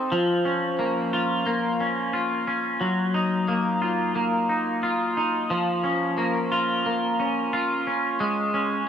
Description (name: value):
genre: dream pop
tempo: 89 BPM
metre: 4/4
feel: straight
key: Bb minor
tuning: A4 = 440 Hz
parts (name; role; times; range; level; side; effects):
- twangy electric guitar; solo; 0.0-8.9 s; F3 to A4; -22 LUFS; equal; lush chorus, tape echo
room: moderate huge ambient reverb, RT60 4.6 s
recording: none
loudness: -22 LUFS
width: side -8 dB against mid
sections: 0.1-8.9 A section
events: none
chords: 0.1 Bbm; 2.8 Ebmadd9; 5.5 Bbm; 8.2 Db